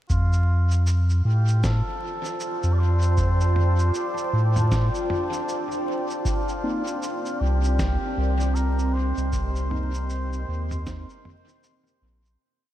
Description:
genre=ambient dub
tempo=78 BPM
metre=4/4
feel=swing 60% on 16ths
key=C dorian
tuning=A4 = 440 Hz
part: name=trumpet with cup mute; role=melody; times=0.1-12.0 s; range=F4 to D5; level=-33 LUFS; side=equal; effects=dub echo
part: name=deep dark ambient pad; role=sustained chords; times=1.6-12.4 s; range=C4 to A5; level=-30 LUFS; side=right 1 dB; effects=chorus, built-in reverb
part: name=warm sub bass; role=bass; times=0.1-12.4 s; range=Bb1 to A2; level=-21 LUFS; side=equal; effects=none
part: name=electronic kick drum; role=drums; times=0.1-11.1 s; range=none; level=-28 LUFS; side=equal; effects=overdrive
part: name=lo-fi sampler-style drum kit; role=drums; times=0.1-12.4 s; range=shaker, snare drum, toms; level=-35 LUFS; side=equal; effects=dub echo
part: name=vibraphone with medium mallets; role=arpeggios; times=4.0-7.1 s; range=D4 to D6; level=-33 LUFS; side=left 2 dB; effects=dub echo
part: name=mellow tine electric piano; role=stabs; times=6.6-11.1 s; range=Bb3 to Eb4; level=-35 LUFS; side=left 1 dB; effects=phaser, dub echo
room=moderate huge ambient reverb, RT60 7.4 s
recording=dreamy mix soaked in reverb, vinyl crackle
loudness=-21 LUFS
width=side -13 dB against mid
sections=0.1-12.4 groove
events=fade-out 8.3-12.4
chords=0.1 F6; 6.3 Cm7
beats=| 0.10 0.87 1.64 2.41 | 3.17 3.94 4.71 5.48 | 6.25 7.02 7.79 8.56 | 9.33 10.10 10.87 11.64

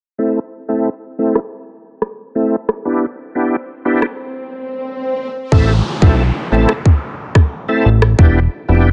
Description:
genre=dancehall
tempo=90 BPM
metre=4/4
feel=straight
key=A minor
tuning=A4 = 440 Hz
part: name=overdriven tonewheel organ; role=accompaniment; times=0.2-8.9 s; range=A3 to A4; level=-20 LUFS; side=equal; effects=chorus vibrato, slow rotary speaker
part: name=swell and downlifter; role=sound effects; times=3.6-8.9 s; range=none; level=-27 LUFS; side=equal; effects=none
part: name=island pop drum kit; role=drums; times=1.4-8.3 s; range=kick drum, rim click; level=-13 LUFS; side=equal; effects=none
part: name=plucky analog bass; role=bass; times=5.5-8.9 s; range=E1 to B1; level=-14 LUFS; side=equal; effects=none
room=digital ambience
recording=low-pass filter, nothing above 10.3 kHz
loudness=-16 LUFS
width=mono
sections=0.2-5.5 A section; 5.5-8.9 B section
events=filter sweep 0.2-5.5; swell 3.6-5.5; silent gap 4.9-5.5; hi-hats muted 5.5-8.9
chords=0.2 Am; 2.9 Em7; 5.5 Am; 8.2 Em7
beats=| 0.19 0.85 1.52 2.19 | 2.85 3.52 4.19 4.85 | 5.52 6.19 6.85 7.52 | 8.19 8.85

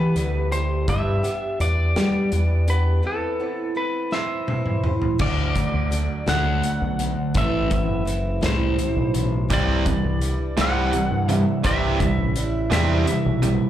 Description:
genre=quiet-loud alternative rock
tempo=56 BPM (dotted quarters)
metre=6/8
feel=straight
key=unclear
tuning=A4 = 441 Hz
part: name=lightly driven lead guitar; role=melody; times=0.0-13.5 s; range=A4 to F#5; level=-27 LUFS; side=left 1 dB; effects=digital delay
part: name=picked old ladder-braced acoustic guitar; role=arpeggios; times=0.0-13.7 s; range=A2 to G4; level=-28 LUFS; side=right 2 dB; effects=slapback echo
part: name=growling fingered electric bass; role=bass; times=0.0-13.6 s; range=F#1 to G3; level=-22 LUFS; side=equal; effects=overdrive
part: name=loose indie drum kit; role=drums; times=0.2-13.6 s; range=crash cymbal, hi-hat, kick drum, snare drum, toms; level=-26 LUFS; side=equal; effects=none
part: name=sludgy distorted guitar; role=riff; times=5.2-13.7 s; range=A2 to D4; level=-27 LUFS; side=left 6 dB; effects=overdrive
part: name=distorted electric guitar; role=riff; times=9.5-13.7 s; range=C3 to C4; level=-24 LUFS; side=right 8 dB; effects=overdrive
room=little or no reverb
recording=live gig heard through the venue's PA, club reverb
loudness=-19 LUFS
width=side -11 dB against mid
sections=0.0-5.2 A section; 5.2-13.7 B section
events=break 3.0-5.2; drum fill 4.1-5.2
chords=0.0 Em; 0.9 G; 3.0 Amadd9; 5.2 D; 7.4 Amadd9; 9.5 Cadd9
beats=| 0.88 1.96 | 3.04 4.12 | 5.20 6.28 | 7.35 8.43 | 9.50 10.58 | 11.65 12.72

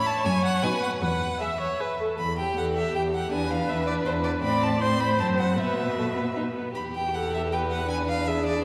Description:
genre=quick classical-period movement for string quartet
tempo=158 BPM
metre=3/4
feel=straight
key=E minor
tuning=A4 = 440 Hz
part: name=clear violin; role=melody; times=0.0-8.6 s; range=C5 to C6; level=-32 LUFS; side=equal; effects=none
part: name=warm violin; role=second line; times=0.0-8.6 s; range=A3 to G#4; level=-35 LUFS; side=equal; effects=none
part: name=warm viola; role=accompaniment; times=0.0-8.6 s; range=G4 to E5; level=-31 LUFS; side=equal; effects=none
part: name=warm cello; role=bass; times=0.0-8.6 s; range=E2 to B2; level=-31 LUFS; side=equal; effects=none
room=wet church reverb, RT60 3.0 s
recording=recorded in a church or concert hall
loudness=-26 LUFS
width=mono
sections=0.0-2.2 A section; 2.2-8.6 B section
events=none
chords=0.2 F#5; 0.6 B; 1.0 E; 2.2 Em; 3.3 E5; 4.4 Am; 5.2 F#(b5, no3); 5.6 Bsus4; 6.8 Em; 7.9 E7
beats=0.25 0.63 | 1.01 1.41 1.80 | 2.19 2.57 2.95 | 3.32 3.69 4.07 | 4.44 4.82 5.20 | 5.58 5.97 6.36 | 6.75 7.14 7.52 | 7.90 8.28

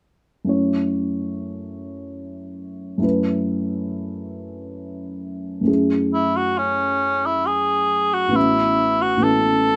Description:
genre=classical, impressionist duo for cor anglais and grand piano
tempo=69 BPM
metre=3/4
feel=uneven beats, rubato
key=F# minor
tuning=A4 = 440 Hz
part: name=dark baby grand piano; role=accompaniment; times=0.4-9.8 s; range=A1 to C#5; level=-24 LUFS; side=equal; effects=none
part: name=warm cor anglais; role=melody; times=6.1-9.8 s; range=C#4 to A4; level=-20 LUFS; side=equal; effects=none
room=moderate studio reverb, RT60 0.5 s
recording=none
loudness=-20 LUFS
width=mono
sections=0.5-5.7 A section; 5.7-9.8 B section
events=none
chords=0.5 F#m7; 3.0 A69/F#; 5.7 F#m9; 8.4 A69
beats=| 0.50 1.37 2.21 | 3.04 3.88 4.75 | 5.68 6.58 7.47 | 8.35 9.24

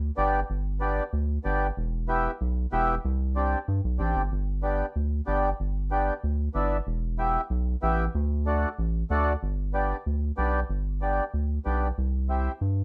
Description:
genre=latin, cumbia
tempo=188 BPM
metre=4/4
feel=straight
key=G major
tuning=A4 = 440 Hz
part: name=round analog bass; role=bass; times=0.0-12.8 s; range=E1 to G2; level=-29 LUFS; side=equal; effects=none
part: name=mellow accordion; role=accompaniment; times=0.2-12.5 s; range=A3 to G4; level=-29 LUFS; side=equal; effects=none
room=light reverb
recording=dark, warm production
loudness=-27 LUFS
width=mono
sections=0.0-9.4 A section; 9.4-12.8 B section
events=none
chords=0.0 G; 1.8 Em; 3.0 Csus2; 4.3 G; 6.9 Em; 8.1 D; 9.4 G; 12.0 C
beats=0.18 | 0.50 0.81 1.13 1.45 | 1.77 2.09 2.41 2.73 | 3.04 3.36 3.68 4.00 | 4.32 4.64 4.96 5.28 | 5.59 5.91 6.23 6.55 | 6.87 7.19 7.51 7.83 | 8.14 8.46 8.78 9.10 | 9.42 9.74 10.06 10.38 | 10.70 11.02 11.34 11.65 | 11.97 12.29 12.61

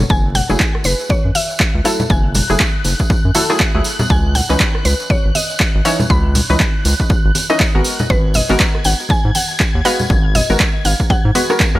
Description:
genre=deep house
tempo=120 BPM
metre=4/4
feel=swing 59% on 16ths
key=F# minor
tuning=A4 = 444 Hz
part: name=round analog bass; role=bass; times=0.0-11.8 s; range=F#1 to G#2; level=-16 LUFS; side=equal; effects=sidechain pumping
part: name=tambourine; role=percussion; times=0.0-11.7 s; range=none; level=-25 LUFS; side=right 2 dB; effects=none
part: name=mallet-like synth pluck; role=melody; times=0.1-11.8 s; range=B4 to B5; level=-22 LUFS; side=equal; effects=chorus, tape echo
part: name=electronic kick drum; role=drums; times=0.1-11.7 s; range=none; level=-16 LUFS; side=equal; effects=overdrive
part: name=soft string machine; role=texture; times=0.1-11.8 s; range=F#6 to G#6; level=-28 LUFS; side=left 1 dB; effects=phaser, ensemble chorus
part: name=punchy analog drum machine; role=drums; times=0.3-11.7 s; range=handclaps, hi-hat, rim click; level=-20 LUFS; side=right 1 dB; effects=overdrive
part: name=congas and bongos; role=percussion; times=0.4-11.6 s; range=none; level=-23 LUFS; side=left 1 dB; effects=sidechain pumping on perc
part: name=filtered dub chord stab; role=stabs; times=0.5-11.8 s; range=E3 to D#5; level=-20 LUFS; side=equal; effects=chorus, sidechain pumping, tape echo
room=little or no reverb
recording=vinyl crackle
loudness=-12 LUFS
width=side -16 dB against mid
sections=0.0-11.8 A section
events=none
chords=0.1 F#m9; 3.9 C#m9; 7.8 G#m9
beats=| 0.10 0.60 1.10 1.60 | 2.10 2.60 3.10 3.60 | 4.10 4.60 5.10 5.60 | 6.10 6.60 7.10 7.60 | 8.10 8.60 9.10 9.60 | 10.10 10.60 11.10 11.60

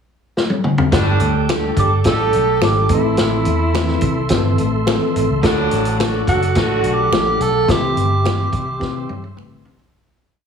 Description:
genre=uptempo 1960s-style soul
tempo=106 BPM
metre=4/4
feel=straight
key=unclear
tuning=A4 = 439 Hz
part: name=vintage drum kit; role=drums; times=0.4-9.9 s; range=hi-hat, kick drum, snare drum, toms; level=-19 LUFS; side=left 1 dB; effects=none
part: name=warm horn section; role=second line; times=0.9-7.1 s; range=A2 to A4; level=-23 LUFS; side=right 1 dB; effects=none
part: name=tine electric piano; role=accompaniment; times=0.9-9.8 s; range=E3 to A4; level=-22 LUFS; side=left 2 dB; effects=overdrive, medium stereo tremolo
part: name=tonewheel organ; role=sustained chords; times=0.9-9.9 s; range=G4 to D6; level=-26 LUFS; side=right 3 dB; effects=chorus vibrato, stopped rotary speaker
part: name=vintage muted fingered electric bass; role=bass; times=0.9-9.8 s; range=F#1 to C3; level=-20 LUFS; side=equal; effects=none
part: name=finger snap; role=percussion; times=1.5-9.5 s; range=none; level=-30 LUFS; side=right 6 dB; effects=none
part: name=breathy tenor saxophone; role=melody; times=1.8-9.4 s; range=E4 to A4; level=-19 LUFS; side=right 2 dB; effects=tape echo
room=light reverb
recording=heavily compressed radio sound, studio reverb, faint mains hum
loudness=-14 LUFS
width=side -6 dB against mid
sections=0.0-0.9 pickup bar; 0.9-9.9 verse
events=drum fill 0.4-0.9, 8.8-9.9; fade-out 7.7-9.9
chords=0.0 N.C.; 0.9 Gsus2; 2.9 Am; 5.4 D; 7.7 C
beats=0.36 | 0.92 1.49 2.05 2.61 | 3.17 3.74 4.30 4.86 | 5.43 5.99 6.55 7.12 | 7.68 8.25 8.81 9.37

